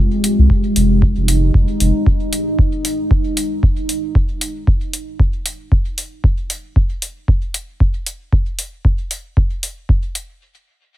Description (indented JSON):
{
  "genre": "dub techno",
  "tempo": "115 BPM",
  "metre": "4/4",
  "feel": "swing 56% on 16ths",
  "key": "F minor",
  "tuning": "A4 = 439 Hz",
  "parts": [
    { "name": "deep dark ambient pad", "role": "sustained chords", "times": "0.0-6.2 s", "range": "Ab3 to G4", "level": "-20 LUFS", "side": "equal", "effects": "chorus, built-in reverb, sidechain pumping" },
    { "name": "warm sub bass", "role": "bass", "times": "0.0-1.9 s", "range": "F1 to C2", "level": "-14 LUFS", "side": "equal", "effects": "sidechain pumping" },
    { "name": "electronic hi-hat", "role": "drums", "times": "0.2-10.3 s", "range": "none", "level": "-21 LUFS", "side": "left 1 dB", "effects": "none" },
    { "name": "electronic kick drum", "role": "drums", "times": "0.5-10.0 s", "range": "none", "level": "-14 LUFS", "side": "equal", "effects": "none" }
  ],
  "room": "little or no reverb",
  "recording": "heavily compressed radio sound, multiband compression",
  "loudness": "-15 LUFS",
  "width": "side -14 dB against mid",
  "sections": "0.0-10.4 A section",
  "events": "none",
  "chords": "0.0 Fmadd9 (rootless)",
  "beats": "0.50 1.02 1.54 | 2.06 2.59 3.11 3.63 | 4.15 4.67 5.20 5.72 | 6.24 6.76 7.28 7.80 | 8.32 8.85 9.37 9.89"
}